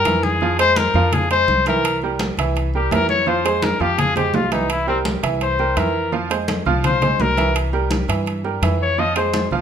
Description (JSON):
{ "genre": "latin, salsa", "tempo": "168 BPM", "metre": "4/4", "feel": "straight", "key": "F minor", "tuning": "A4 = 439 Hz", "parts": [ { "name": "clear trumpet", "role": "melody", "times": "0.0-9.5 s", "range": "C4 to Eb5", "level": "-19 LUFS", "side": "left 4 dB", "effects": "none" }, { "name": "bright grand piano", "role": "accompaniment", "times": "0.0-9.6 s", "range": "E3 to F5", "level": "-22 LUFS", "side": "right 6 dB", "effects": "none" }, { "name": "upright bass", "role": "bass", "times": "0.0-9.6 s", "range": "C2 to G2", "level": "-23 LUFS", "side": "left 1 dB", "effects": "none" }, { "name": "congas", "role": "percussion", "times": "0.1-9.6 s", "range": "none", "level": "-26 LUFS", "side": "left 2 dB", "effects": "none" }, { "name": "timbales", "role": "percussion", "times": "0.1-9.5 s", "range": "none", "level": "-27 LUFS", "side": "right 5 dB", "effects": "none" }, { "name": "claves", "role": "percussion", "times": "9.2-9.3 s", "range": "none", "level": "-34 LUFS", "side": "left 1 dB", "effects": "none" } ], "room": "moderate large studio reverb, RT60 1.1 s", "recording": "minimal, uncompressed stereo recording", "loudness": "-16 LUFS", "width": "side -8 dB against mid", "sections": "0.0-9.6 A section", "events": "trumpet solo 0.0-9.6", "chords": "0.4 Fm; 1.8 C7; 3.3 Fm; 4.7 C7; 6.1 Fm; 7.6 C7; 9.0 Fm", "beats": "0.05 | 0.41 0.77 1.12 1.48 | 1.84 2.20 2.56 2.91 | 3.27 3.63 3.99 4.34 | 4.70 5.06 5.41 5.77 | 6.13 6.48 6.84 7.20 | 7.55 7.91 8.27 8.62 | 8.98 9.34" }